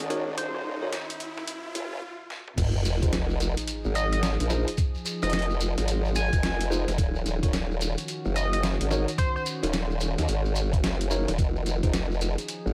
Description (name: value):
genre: glitch hop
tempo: 109 BPM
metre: 4/4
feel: swing 63% on 16ths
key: F phrygian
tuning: A4 = 437 Hz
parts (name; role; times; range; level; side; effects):
- warbly tape-like pad; sustained chords; 0.0-12.7 s; Eb3 to Ab4; -40 LUFS; equal; chorus, built-in reverb, sidechain pumping
- formant-sweep wobble bass; bass; 0.0-12.7 s; Eb1 to Eb2; -30 LUFS; equal; chorus, overdrive, high-pass filter
- boom bap sampler-style drum kit; drums; 0.0-12.6 s; crash cymbal, hi-hat, snare drum, toms; -35 LUFS; equal; high-pass filter on hats, high-pass filter on snare, high-pass filter on toms, high-pass filter on cymbals
- riser and sub drop; sound effects; 0.0-4.8 s; none; -36 LUFS; equal; none
- bell-like tine electric piano; stabs; 0.1-11.9 s; Eb4 to Db5; -36 LUFS; equal; vintage 12-bit sampler grit, sidechain pumping, digital delay
- sync lead; melody; 0.4-0.6, 4.0-9.4 s; C5 to Ab5; -36 LUFS; equal; chorus, cassette tape, digital delay
- electronic kick drum; drums; 2.6-11.9 s; none; -29 LUFS; equal; none
- shekere; percussion; 2.6-12.7 s; none; -40 LUFS; equal; none
room: little or no reverb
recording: high-pass filter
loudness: -27 LUFS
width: mono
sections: 0.0-2.6 A section; 2.6-12.7 B section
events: build-up 0.0-2.6; riser 0.0-2.0; filter sweep on tine electric piano 0.0-2.6; filter sweep 0.0-2.6; stop 2.0-2.6; drum fill 2.3; drop 2.6-12.7; impact 2.6-4.8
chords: 0.0 Ebm7; 2.6 Fm7; 7.0 Ebm7; 11.4 Fm7